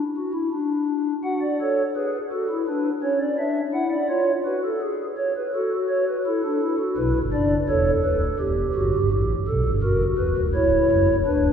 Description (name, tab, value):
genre	classical, baroque-style 4-part fugue for pipe organ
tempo	84 BPM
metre	4/4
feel	straight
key	unclear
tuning	A4 = 441 Hz
part	pipe organ, stopped flute	solo	0.2-11.5 s	C#1 to F#5	-20 LUFS	equal	none
room	wet cathedral reverb, RT60 4.2 s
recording	recorded in a church or concert hall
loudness	-20 LUFS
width	side -8 dB against mid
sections	0.0-11.5 A section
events	none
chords	0.0 N.C.; 1.2 F#m; 2.7 Bm; 4.1 C#/E#; 5.5 F#m; 7.0 Bm; 8.4 Em; 9.8 F#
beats	0.52 | 1.24 1.96 2.68 3.39 | 4.11 4.82 5.54 6.25 | 6.97 7.68 8.40 9.12 | 9.83 10.54 11.26